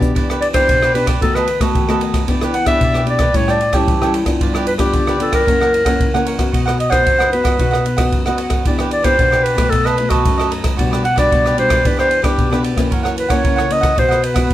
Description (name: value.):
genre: samba and choro.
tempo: 113 BPM.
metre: 4/4.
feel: straight.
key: E minor.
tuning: A4 = 441 Hz.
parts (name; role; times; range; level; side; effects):
cavaquinho; accompaniment; 0.0-14.5 s; D#4 to G5; -22 LUFS; right 5 dB; none.
nylon-string guitar; accompaniment; 0.0-14.5 s; F#2 to G4; -20 LUFS; left 3 dB; none.
open jazz drum kit; drums; 0.0-14.5 s; hi-hat, kick drum, ride cymbal, rim click; -18 LUFS; equal; none.
warm clarinet; melody; 0.4-14.5 s; F#4 to F#5; -16 LUFS; equal; none.
room: wet studio reverb, RT60 0.5 s.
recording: heard from further back in the room.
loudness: -13 LUFS.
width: side -13 dB against mid.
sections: 0.2-14.5 A section.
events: none.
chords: 0.2 Em7; 1.2 B7/D#; 2.3 Em7; 3.3 A7; 4.4 G7; 5.5 F#7; 6.5 B; 8.7 Em7; 9.7 B7; 10.8 Gmaj7/B; 11.8 Em7; 12.9 F#7; 14.0 B.